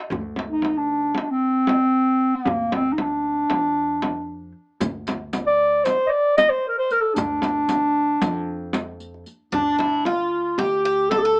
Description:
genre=Turkish makam ensemble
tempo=229 BPM (eighths)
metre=9/8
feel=straight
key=D makam kurdi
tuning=A4 = 440 Hz
part: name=upright bass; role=bass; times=0.1-11.4 s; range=D2 to F2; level=-38 LUFS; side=equal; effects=none
part: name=darbuka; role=percussion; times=0.1-11.4 s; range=none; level=-34 LUFS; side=equal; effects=none
part: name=frame drum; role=percussion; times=0.1-11.2 s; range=none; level=-30 LUFS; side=equal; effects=none
part: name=dark clarinet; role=melody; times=0.5-11.4 s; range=Bb3 to Eb5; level=-22 LUFS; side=equal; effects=plate reverb
part: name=riq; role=percussion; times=4.8-9.3 s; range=none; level=-36 LUFS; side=equal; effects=none
part: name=Greek bouzouki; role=second line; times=9.5-11.4 s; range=D4 to A4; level=-30 LUFS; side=equal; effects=none
room=moderate small room reverb, RT60 0.5 s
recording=small speaker sound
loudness=-22 LUFS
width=mono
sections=0.1-9.5 A section; 9.5-11.4 B section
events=none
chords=none

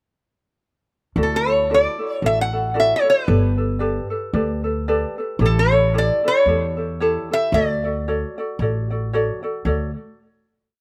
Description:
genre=Hawaiian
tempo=113 BPM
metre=4/4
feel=swing 56% on 8ths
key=D major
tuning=A4 = 443 Hz
part: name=lap resonator guitar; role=melody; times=1.2-9.1 s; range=A4 to F#5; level=-21 LUFS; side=equal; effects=none
part: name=ukulele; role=accompaniment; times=1.2-9.9 s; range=E4 to D5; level=-26 LUFS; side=equal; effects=slapback echo
part: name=upright bass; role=bass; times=1.2-9.9 s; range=G1 to E2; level=-24 LUFS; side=equal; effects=none
room=little or no reverb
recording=recorded outdoors, with no room sound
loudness=-20 LUFS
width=mono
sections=1.2-9.7 A section; 9.7-10.8 final chord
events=none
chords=1.2 Dadd9; 3.3 Gadd9; 5.4 A7; 7.5 Dmaj7

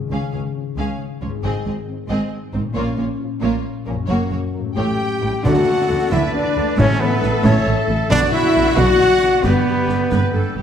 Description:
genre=cinematic, heroic adventure film score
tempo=90 BPM (dotted quarters)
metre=6/8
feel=straight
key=Db major, D major from 5.5 s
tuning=A4 = 440 Hz
part: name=concert harp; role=arpeggios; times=0.0-10.6 s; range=Gb2 to D5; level=-26 LUFS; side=left 7 dB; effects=none
part: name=warm symphonic violin section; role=melody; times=0.1-10.6 s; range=A4 to G5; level=-31 LUFS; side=left 2 dB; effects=none
part: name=warm symphonic violin section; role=second line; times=0.1-10.5 s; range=Db4 to G5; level=-29 LUFS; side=equal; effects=none
part: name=clear symphonic viola section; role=accompaniment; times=0.1-10.6 s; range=A3 to B4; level=-26 LUFS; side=right 1 dB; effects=none
part: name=rich symphonic cello section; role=bass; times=0.1-10.6 s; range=Db2 to D3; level=-24 LUFS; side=right 2 dB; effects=none
part: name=rich symphonic double bass section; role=bass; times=0.1-10.6 s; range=Gb1 to D2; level=-25 LUFS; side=right 3 dB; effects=none
part: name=dark French horn section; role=sustained chords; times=0.6-10.6 s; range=Eb3 to G4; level=-20 LUFS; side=left 2 dB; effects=none
part: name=timpani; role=percussion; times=1.4-2.1, 5.5-7.4 s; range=Ab2 to D3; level=-25 LUFS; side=equal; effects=none
part: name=silver concert flute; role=second line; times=4.8-10.5 s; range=B4 to G5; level=-29 LUFS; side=equal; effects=none
part: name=warm trumpet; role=stabs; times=4.8-10.6 s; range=B3 to G4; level=-24 LUFS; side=right 2 dB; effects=none
part: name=bright oboe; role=second line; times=5.4-10.6 s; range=F#5 to A5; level=-30 LUFS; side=right 1 dB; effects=none
part: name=concert snare drum, clash cymbals and concert bass drum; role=drums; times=5.4-10.3 s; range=none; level=-26 LUFS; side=right 1 dB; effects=none
part: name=warm clarinet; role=second line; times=5.5-10.5 s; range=D5 to E5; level=-30 LUFS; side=left 1 dB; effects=none
room=moderate recital hall reverb, RT60 1.4 s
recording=none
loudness=-16 LUFS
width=side -8 dB against mid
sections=0.1-5.5 A section; 5.5-10.6 B section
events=none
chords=0.1 Db; 1.4 Ab; 2.8 Bbm; 4.1 Gb; 4.8 A7; 5.5 D; 6.8 A5; 8.1 Bm; 9.4 G

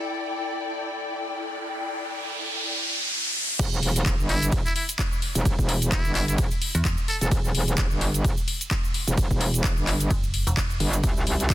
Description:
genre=bass house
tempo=129 BPM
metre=4/4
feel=swing 57% on 16ths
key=E minor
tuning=A4 = 440 Hz
part: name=riser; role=sound effects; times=1.2-3.6 s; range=none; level=-28 LUFS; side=right 1 dB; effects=none
part: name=warm symphonic string section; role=texture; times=0.0-2.7, 11.0-11.5 s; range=E4 to G5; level=-30 LUFS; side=left 3 dB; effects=sidechain pumping
part: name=metallic wobble bass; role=bass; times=3.6-11.5 s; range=E1 to C2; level=-24 LUFS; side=equal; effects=chorus, overdrive, sidechain pumping
part: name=electronic kick drum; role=drums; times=3.6-11.5 s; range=none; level=-26 LUFS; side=equal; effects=none
part: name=house drum kit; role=drums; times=3.6-11.5 s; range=crash cymbal, handclaps, hi-hat, ride cymbal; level=-29 LUFS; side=left 1 dB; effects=none
part: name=egg shaker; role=percussion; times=3.6-11.5 s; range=none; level=-35 LUFS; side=right 5 dB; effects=none
part: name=trumpet with metal mute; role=melody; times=4.3-7.3 s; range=E4 to A4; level=-32 LUFS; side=equal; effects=ping-pong delay
part: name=metallic FM bass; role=bass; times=6.7-7.0, 10.1-10.8 s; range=E1 to E2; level=-25 LUFS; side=equal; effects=overdrive, sidechain pumping
room=little or no reverb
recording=dense, heavily limited modern master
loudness=-22 LUFS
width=side -14 dB against mid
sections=0.0-3.6 A section; 3.6-11.5 B section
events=riser 1.2-3.6; drop 3.6-11.5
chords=0.0 Em; 11.0 C

